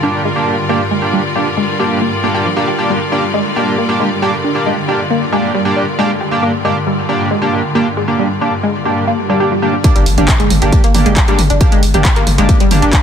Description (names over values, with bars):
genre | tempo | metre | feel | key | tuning
driving peak-time techno | 136 BPM | 4/4 | straight | G minor | A4 = 440 Hz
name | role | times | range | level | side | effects
analog pluck | riff | 0.0-12.9 s | F3 to G4 | -18 LUFS | left 1 dB | chorus, phaser, overdrive, sidechain pumping, ping-pong delay
sync-sweep polysynth | stabs | 0.0-12.9 s | Bb3 to G4 | -17 LUFS | right 2 dB | chorus, sidechain pumping, ping-pong delay
swarming drone | drone | 0.0-13.0 s | G2 to D3 | -22 LUFS | equal | built-in reverb, phaser, sidechain pumping
clear studio string section | texture | 0.0-9.8 s | G3 to D5 | -21 LUFS | left 2 dB | sidechain pumping
swell and impact | sound effects | 9.1-11.6 s | none | -22 LUFS | left 1 dB | none
electronic kick drum | drums | 9.8-13.0 s | none | -12 LUFS | equal | none
punchy analog drum machine | drums | 9.8-13.0 s | handclaps, hi-hat, toms | -16 LUFS | equal | sidechain pumping on cymbals, sidechain pumping on hats, sidechain pumping on toms
saturated sub bass | bass | 10.0-12.9 s | G1 | -16 LUFS | equal | overdrive, sidechain pumping, low-pass filter
room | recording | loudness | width
light reverb, digital ambience | none | -11 LUFS | side -8 dB against mid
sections
0.0-9.8 A section; 9.8-13.0 B section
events
filter sweep on synth arpeggio sound 0.0-9.8; swell 9.1-9.8; drop 9.8-13.0; impact 9.8-11.6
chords
0.0 Gm